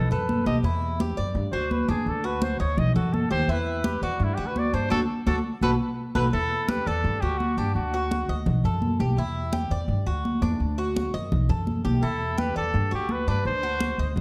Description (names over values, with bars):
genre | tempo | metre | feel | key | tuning
latin, Cuban son and guajira | 169 BPM | 4/4 | straight | E minor from 6.3 s | A4 = 441 Hz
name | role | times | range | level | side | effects
warm trumpet | melody | 0.0-8.4, 12.0-14.1 s | E4 to D#5 | -31 LUFS | equal | none
Cuban tres | arpeggios | 0.0-14.2 s | D4 to D#5 | -34 LUFS | equal | none
upright bass | bass | 0.0-14.2 s | B1 to G2 | -29 LUFS | equal | none
congas | percussion | 0.1-14.2 s | none | -31 LUFS | equal | none
room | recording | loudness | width
moderate recital hall reverb, RT60 1.4 s | dark, warm production | -25 LUFS | mono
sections
0.0-6.3 A section; 6.3-14.2 B section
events
trumpet solo 0.0-6.3; band accent 4.9-6.3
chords
0.0 B7; 0.6 Em7; 1.4 G5; 2.1 D; 2.8 B7; 3.5 Em7; 4.2 G5; 4.9 D; 5.6 B5; 6.3 Em7; 7.0 G5; 7.8 D; 8.5 B7; 9.2 Em7; 9.9 G5; 10.6 D; 11.3 B7; 12.0 Em7; 12.7 G5; 13.5 D7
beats
0.29 | 0.64 1.00 1.35 1.71 | 2.07 2.42 2.78 3.13 | 3.49 3.85 4.20 4.56 | 4.91 5.27 5.62 5.98 | 6.33 6.69 7.04 7.40 | 7.76 8.11 8.47 8.82 | 9.18 9.54 9.89 10.25 | 10.60 10.96 11.31 11.67 | 12.03 12.38 12.74 13.10 | 13.45 13.81 14.16